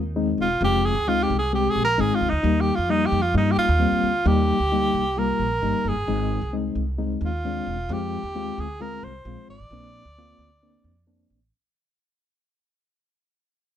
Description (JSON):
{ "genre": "uptempo 1960s-style soul", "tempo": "132 BPM", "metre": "4/4", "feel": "straight", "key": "Eb major", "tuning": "A4 = 440 Hz", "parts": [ { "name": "mellow reed electric piano", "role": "accompaniment", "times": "0.0-11.4 s", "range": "G3 to G4", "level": "-25 LUFS", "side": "left 4 dB", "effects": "fast tremolo" }, { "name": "upright bass", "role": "bass", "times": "0.0-11.5 s", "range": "Fb1 to G2", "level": "-26 LUFS", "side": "right 1 dB", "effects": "none" }, { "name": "breathy tenor saxophone", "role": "melody", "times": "0.4-11.0 s", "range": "Eb4 to D5", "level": "-24 LUFS", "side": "right 2 dB", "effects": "plate reverb" } ], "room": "moderate studio reverb, RT60 0.6 s", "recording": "dark, warm production", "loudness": "-20 LUFS", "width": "side -10 dB against mid", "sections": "0.0-4.3 A section; 4.3-11.5 B section", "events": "tenor saxophone solo 0.0-4.3; fade-out 4.3-11.5", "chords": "0.0 Ab; 0.6 Fm; 2.4 Eb; 6.1 Ab; 7.9 Fm; 9.7 Bbadd9", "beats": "0.15 | 0.61 1.07 1.52 1.98 | 2.43 2.89 3.34 3.80 | 4.25 4.71 5.16 5.62 | 6.07 6.53 6.98 7.44 | 7.89 8.35 8.80 9.26 | 9.71 10.16 10.62 11.07" }